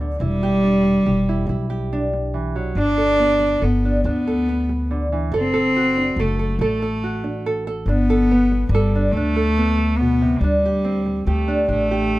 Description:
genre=acoustic folk-pop ballad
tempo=47 BPM (dotted quarters)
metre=6/8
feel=straight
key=G major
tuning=A4 = 439 Hz
part: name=nylon-string guitar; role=accompaniment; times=0.0-12.2 s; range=G2 to A4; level=-24 LUFS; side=right 2 dB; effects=none
part: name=upright bass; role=bass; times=0.0-12.2 s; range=E1 to D2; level=-23 LUFS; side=equal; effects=none
part: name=rich cello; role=melody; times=0.2-12.2 s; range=G3 to D4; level=-19 LUFS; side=equal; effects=none
room=light reverb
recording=none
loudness=-17 LUFS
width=side -17 dB against mid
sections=0.0-12.2 A section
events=none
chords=0.2 Em7; 2.8 Gadd9; 5.3 D7/F#; 7.9 Gadd9; 10.4 D7sus4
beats=| 0.19 1.47 | 2.76 4.05 | 5.33 6.60 | 7.87 9.13 | 10.40 11.69

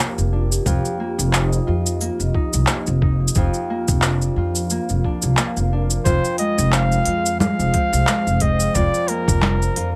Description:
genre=folktronica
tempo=89 BPM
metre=4/4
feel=swing 56% on 16ths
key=F dorian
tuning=A4 = 440 Hz
part: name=warbly tape-like pad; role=sustained chords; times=0.0-10.0 s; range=F3 to F5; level=-33 LUFS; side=equal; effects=chorus, built-in reverb, plate reverb
part: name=Celtic harp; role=arpeggios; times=0.0-10.0 s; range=F2 to F4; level=-28 LUFS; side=equal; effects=low-pass filter, delay, plate reverb
part: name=organic electronic drum kit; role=drums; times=0.0-9.9 s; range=cabasa, congas, handclaps, hi-hat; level=-24 LUFS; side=equal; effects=none
part: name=upright bass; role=bass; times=0.2-10.0 s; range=F1 to F2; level=-22 LUFS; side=equal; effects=none
part: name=electronic kick drum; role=drums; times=0.7-9.4 s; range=none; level=-23 LUFS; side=equal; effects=none
part: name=warm flugelhorn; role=melody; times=6.0-10.0 s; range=Bb4 to F5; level=-24 LUFS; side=equal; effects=delay, plate reverb
room=light reverb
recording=none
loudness=-19 LUFS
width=mono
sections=0.0-10.0 A section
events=none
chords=0.0 Gm/F; 0.7 Eb/F; 6.1 Fm; 8.8 Gm/F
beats=| 0.66 1.33 2.01 2.68 | 3.36 4.03 4.71 5.38 | 6.05 6.73 7.40 8.07 | 8.75 9.42

